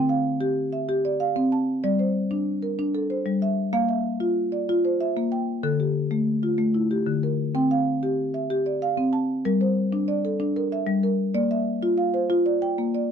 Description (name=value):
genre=southern african traditional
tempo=126 BPM (dotted quarters)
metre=12/8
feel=straight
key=G dorian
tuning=A4 = 440 Hz
part: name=marimba with soft mallets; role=solo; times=0.0-13.1 s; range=D3 to A5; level=-22 LUFS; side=equal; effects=none
room=light reverb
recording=close, detailed microphones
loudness=-22 LUFS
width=side -7 dB against mid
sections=0.0-9.4 A section; 9.4-13.1 A section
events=none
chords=0.0 C; 1.8 Gm; 3.7 Bb; 5.6 Dm; 7.5 C; 9.4 Gm; 11.3 Bb